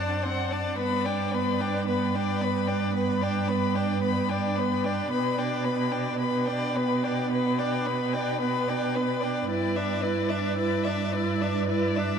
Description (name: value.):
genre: classical, slow romantic movement for string quartet.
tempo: 55 BPM.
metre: 4/4.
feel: rubato.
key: G major.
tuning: A4 = 444 Hz.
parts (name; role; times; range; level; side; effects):
rich violin; melody; 0.0-12.2 s; D5 to B5; -32 LUFS; left 8 dB; none.
rich violin; second line; 0.0-12.2 s; B4 to D5; -31 LUFS; left 2 dB; none.
rich viola; accompaniment; 0.0-12.2 s; B3 to E4; -30 LUFS; right 1 dB; none.
warm cello; bass; 0.0-12.2 s; F#2 to B2; -29 LUFS; right 5 dB; none.
room: wet huge ambient reverb, RT60 7.4 s.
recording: in a vast, echoing space.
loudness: -24 LUFS.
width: side -7 dB against mid.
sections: 0.0-12.2 A section.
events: none.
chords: 0.0 D7/F#; 0.8 G; 5.1 G/B; 9.5 Em7/G.